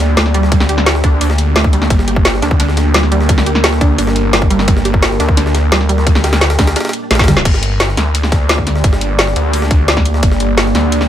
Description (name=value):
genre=dark technical drum and bass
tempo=173 BPM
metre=4/4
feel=straight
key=G minor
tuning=A4 = 437 Hz
part: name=deep dark ambient pad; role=sustained chords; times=0.0-11.1 s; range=Bb3 to D5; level=-20 LUFS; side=right 1 dB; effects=chorus, built-in reverb, sidechain pumping
part: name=snarling distorted saw bass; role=bass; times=0.0-11.1 s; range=G1 to D2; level=-14 LUFS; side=equal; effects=distortion
part: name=drum and bass drum kit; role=drums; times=0.0-11.1 s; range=crash cymbal, hi-hat, snare drum, toms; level=-15 LUFS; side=equal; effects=none
part: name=jungle sampler-style drum kit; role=drums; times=0.0-11.1 s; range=hi-hat, ride cymbal, snare drum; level=-23 LUFS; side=equal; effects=high-pass filter on snare, high-pass filter on cymbals, high-pass filter on hats
part: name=wide unison pluck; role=arpeggios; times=0.2-7.4 s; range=G3 to G4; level=-20 LUFS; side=right 4 dB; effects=cassette tape, sidechain pumping, dub echo
part: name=electronic kick drum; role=drums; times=0.5-10.3 s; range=none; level=-13 LUFS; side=equal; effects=none
room=little or no reverb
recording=none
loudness=-10 LUFS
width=side -11 dB against mid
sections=0.0-7.5 A section; 7.5-11.1 A section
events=drop 0.0-7.5, 7.5-11.1; drum fill 7.1-7.5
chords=0.0 Gm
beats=0.17 | 0.52 0.86 1.21 1.56 | 1.90 2.25 2.60 2.94 | 3.29 3.64 3.98 4.33 | 4.68 5.03 5.37 5.72 | 6.07 6.41 6.76 7.11 | 7.45 7.80 8.15 8.49 | 8.84 9.19 9.53 9.88 | 10.23 10.57 10.92